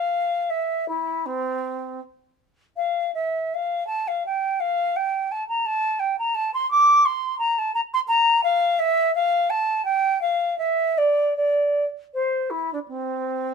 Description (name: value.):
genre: classical, baroque-style fantasia for unaccompanied flute.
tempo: 84 BPM.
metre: 4/4.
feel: uneven beats, rubato.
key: F major, C major from 8.4 s.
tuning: A4 = 436 Hz.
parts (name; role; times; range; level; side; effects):
silver concert flute; solo; 0.0-13.5 s; C4 to D6; -20 LUFS; equal; none.
room: light reverb.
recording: minimal, uncompressed stereo recording.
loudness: -20 LUFS.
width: side -5 dB against mid.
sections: 0.0-13.5 A section.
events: none.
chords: none.